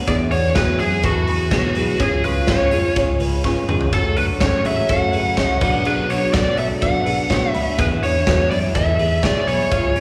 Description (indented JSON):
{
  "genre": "jangly indie pop",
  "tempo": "124 BPM",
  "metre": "4/4",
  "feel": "straight",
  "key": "unclear",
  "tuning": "A4 = 435 Hz",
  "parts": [
    { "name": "dark upright piano", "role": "accompaniment", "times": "0.0-10.0 s", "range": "B3 to F#5", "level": "-30 LUFS", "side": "equal", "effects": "none" },
    { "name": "fingerpicked plugged-in steel-string acoustic guitar", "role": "accompaniment", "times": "0.0-10.0 s", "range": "F#2 to G#4", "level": "-30 LUFS", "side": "equal", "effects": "none" },
    { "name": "twelve-string electric guitar", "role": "arpeggios", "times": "0.0-10.0 s", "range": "B3 to C#5", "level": "-28 LUFS", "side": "equal", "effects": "phaser" },
    { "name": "vintage muted fingered electric bass", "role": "bass", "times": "0.0-10.0 s", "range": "E#1 to B2", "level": "-26 LUFS", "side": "equal", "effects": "none" },
    { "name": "biting lead guitar", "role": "melody", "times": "0.1-10.0 s", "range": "F#4 to F#5", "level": "-23 LUFS", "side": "equal", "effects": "overdrive" },
    { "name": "big rock drum kit", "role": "drums", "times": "0.1-10.0 s", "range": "crash cymbal, hi-hat, kick drum, ride cymbal, snare drum, toms", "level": "-24 LUFS", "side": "equal", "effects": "none" }
  ],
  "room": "wet church reverb, RT60 3.0 s",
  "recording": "recorded in a church or concert hall, vinyl crackle, small room ambience",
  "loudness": "-18 LUFS",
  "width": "mono",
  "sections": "0.0-10.0 A section",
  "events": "drum fill 3.5-3.9",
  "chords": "0.1 E; 2.0 C#; 3.9 F#m; 5.6 Bm; 7.8 E"
}